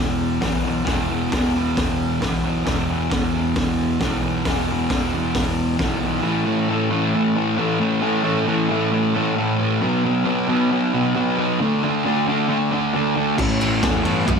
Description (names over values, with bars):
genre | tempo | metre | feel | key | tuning
garage rock duo or trio | 134 BPM | 4/4 | straight | unclear | A4 = 439 Hz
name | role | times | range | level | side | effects
fuzz guitar | riff | 0.0-14.4 s | E2 to D4 | -19 LUFS | equal | distortion
growling picked electric bass | bass | 0.0-6.2, 13.4-14.4 s | E1 to G2 | -27 LUFS | equal | overdrive
raw garage drum kit | drums | 0.4-5.9, 13.4-14.4 s | crash cymbal, hi-hat, kick drum, ride cymbal, snare drum | -25 LUFS | equal | none
room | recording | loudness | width
light reverb | small room reverb | -18 LUFS | side -6 dB against mid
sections
0.0-6.2 A section; 6.2-14.4 B section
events
none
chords
0.0 E5; 6.2 A5; 9.8 B5; 11.6 D5; 13.4 A5